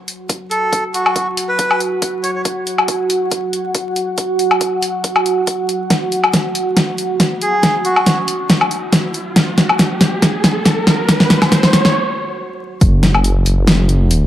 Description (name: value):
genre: deep dubstep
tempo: 139 BPM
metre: 4/4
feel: swing 54% on 16ths, half-time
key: unclear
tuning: A4 = 440 Hz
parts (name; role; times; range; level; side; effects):
- deep dark ambient pad; sustained chords; 0.3-14.3 s; F#4 to F#5; -21 LUFS; right 2 dB; chorus, built-in reverb
- deep house drum kit; drums; 0.1-14.2 s; hi-hat, snare drum, woodblock; -14 LUFS; equal; none
- electronic kick drum; drums; 0.3-12.9 s; none; -19 LUFS; equal; high-pass filter on kick, high-pass filter on room
- melodica; melody; 0.5-2.4, 7.4-8.2 s; F#4 to C#5; -19 LUFS; equal; dub echo
- riser; sound effects; 8.2-11.9 s; none; -22 LUFS; right 1 dB; none
- dark detuned saw bass; bass; 12.8-14.3 s; F#1; -12 LUFS; equal; none
room: wet spring reverb, RT60 1.9 s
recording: vinyl crackle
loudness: -13 LUFS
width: side -12 dB against mid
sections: 0.0-12.8 A section; 12.8-14.3 B section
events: build-up 0.0-12.8; drum fill 5.9-11.9; riser 8.2-11.9; break 11.9-12.8; drop 12.8-14.3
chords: none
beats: 0.29 | 0.73 1.16 1.59 2.02 | 2.45 2.88 3.32 3.75 | 4.18 4.61 5.04 5.47 | 5.91 6.34 6.77 7.20 | 7.63 8.06 8.50 8.93 | 9.36 9.79 10.22 10.65 | 11.09 11.52 11.95 12.38 | 12.81 13.24 13.68 14.11